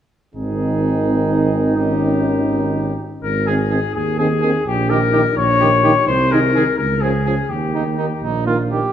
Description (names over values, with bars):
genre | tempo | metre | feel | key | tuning
classical, brass quintet | 84 BPM (dotted quarters) | 6/8 | straight | Ab major | A4 = 440 Hz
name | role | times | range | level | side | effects
clear trumpet | melody | 0.3-8.2 s | G4 to Db5 | -20 LUFS | left 6 dB | none
bright trumpet | second line | 0.3-8.9 s | Eb4 to Ab4 | -25 LUFS | right 5 dB | none
warm euphonium | accompaniment | 0.3-8.8 s | Eb3 to F3 | -23 LUFS | right 2 dB | none
warm tuba | bass | 0.3-8.8 s | Ab1 to Eb2 | -20 LUFS | right 3 dB | none
mellow French horn | accompaniment | 0.4-8.8 s | Bb3 to Eb4 | -24 LUFS | left 2 dB | none
room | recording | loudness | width
wet recital hall reverb, RT60 1.6 s | recorded in a church or concert hall | -15 LUFS | side -10 dB against mid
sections
0.4-3.2 A section; 3.2-8.9 B section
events
none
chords
0.4 Ab; 1.8 Eb7/Ab; 3.2 Ab; 4.7 Eb7/Bb; 6.1 Ab/C; 6.8 Db; 7.5 Eb